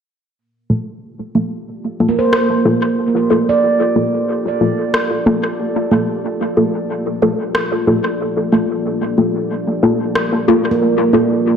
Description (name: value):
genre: ambient dub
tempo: 92 BPM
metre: 4/4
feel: straight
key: G minor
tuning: A4 = 440 Hz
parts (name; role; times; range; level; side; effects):
- deep dark ambient pad; sustained chords; 1.8-11.6 s; Bb3 to D5; -23 LUFS; left 1 dB; chorus, built-in reverb
- filtered dub chord stab; stabs; 0.7-11.3 s; Bb3 to A4; -16 LUFS; left 1 dB; phaser, dub echo
- handpan; arpeggios; 2.1-6.6, 10.7-11.6 s; Bb3 to D5; -16 LUFS; right 4 dB; low-pass filter, analog delay
- electronic rim click; drums; 2.3-10.3 s; none; -22 LUFS; left 1 dB; overdrive, small room ambience, dub echo
room: wet plate reverb, RT60 1.8 s, digital ambience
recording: dreamy mix soaked in reverb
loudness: -14 LUFS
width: side -7 dB against mid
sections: 0.4-11.6 A section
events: fade-in on ambient pad 0.4-11.6; filter sweep on synth stab 0.4-11.6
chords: 0.4 Gm9